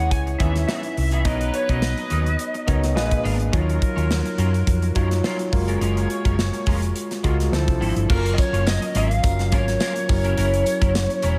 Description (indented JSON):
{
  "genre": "polished 1980s jazz-funk pop",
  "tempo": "105 BPM",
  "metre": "4/4",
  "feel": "swing 54% on 16ths",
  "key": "F# major",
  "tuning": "A4 = 440 Hz",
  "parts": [
    { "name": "lead guitar through a small cranked amp", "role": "melody", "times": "0.0-3.3, 8.1-11.4 s", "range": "A#4 to G#5", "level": "-28 LUFS", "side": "equal", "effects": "overdrive, lush chorus, analog delay" },
    { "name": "clear horn section", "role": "second line", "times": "0.0-7.8 s", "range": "F3 to C#5", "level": "-36 LUFS", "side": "equal", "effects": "analog delay" },
    { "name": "overdriven tine electric piano", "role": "accompaniment", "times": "0.0-11.4 s", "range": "F3 to A#5", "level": "-29 LUFS", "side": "equal", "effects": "subtle chorus" },
    { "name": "electric guitar at the edge of break-up", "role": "riff", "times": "0.0-11.4 s", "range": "E3 to C#5", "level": "-35 LUFS", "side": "equal", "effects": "ensemble chorus" },
    { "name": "hollow-body short-scale fingered electric bass", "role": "bass", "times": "0.0-11.4 s", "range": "E1 to F#2", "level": "-24 LUFS", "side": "equal", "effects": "none" },
    { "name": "modern studio drum kit", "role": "drums", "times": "0.1-11.4 s", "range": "crash cymbal, hi-hat, kick drum, snare drum", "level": "-26 LUFS", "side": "equal", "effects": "none" },
    { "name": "tambourine", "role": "percussion", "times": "8.1-11.4 s", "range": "none", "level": "-42 LUFS", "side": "equal", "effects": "none" }
  ],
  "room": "light reverb",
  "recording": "none",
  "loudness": "-21 LUFS",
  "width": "mono",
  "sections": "0.0-8.1 A section; 8.1-11.4 B section",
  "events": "none",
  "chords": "0.0 C#m9; 1.3 Bmaj9; 3.0 A#7b9; 3.5 D#m9; 5.5 F#maj9; 7.5 Dm9; 8.1 F#maj7; 10.1 F#7",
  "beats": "0.11 0.68 | 1.25 1.82 2.39 2.96 | 3.53 4.10 4.67 5.24 | 5.82 6.38 6.96 7.53 | 8.10 8.67 9.24 9.81 | 10.38 10.95"
}